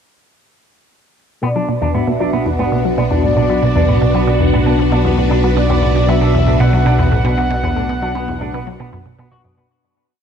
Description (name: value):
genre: ambient, sequencer-driven space music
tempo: 116 BPM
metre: 4/4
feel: straight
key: B minor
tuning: A4 = 440 Hz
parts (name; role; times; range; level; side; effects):
- mellow horn-like synth lead; melody; 1.4-9.2 s; D5 to F#5; -22 LUFS; right 1 dB; chorus, ping-pong delay
- phased string machine; sustained chords; 1.5-9.7 s; B3 to F#4; -19 LUFS; left 1 dB; ensemble chorus, phaser
- electric guitar with an envelope filter; arpeggios; 1.4-9.7 s; B2 to F#4; -24 LUFS; moving between left 3 dB and right 5 dB; auto-pan, low-pass filter, ping-pong delay
- resonant blip pluck; riff; 1.4-9.7 s; E2 to F#3; -18 LUFS; equal; phaser, ping-pong delay
- fat analog bass; bass; 1.4-9.7 s; B1; -18 LUFS; equal; tube saturation
room: moderate huge ambient reverb, RT60 8.4 s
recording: none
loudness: -12 LUFS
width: side -7 dB against mid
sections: 1.4-9.7 A section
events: fade-out 6.9-9.7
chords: 1.4 Bm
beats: | 1.43 1.95 2.46 2.98 | 3.50 4.01 4.53 5.05 | 5.57 6.08 6.60 7.12 | 7.64 8.15 8.67 9.19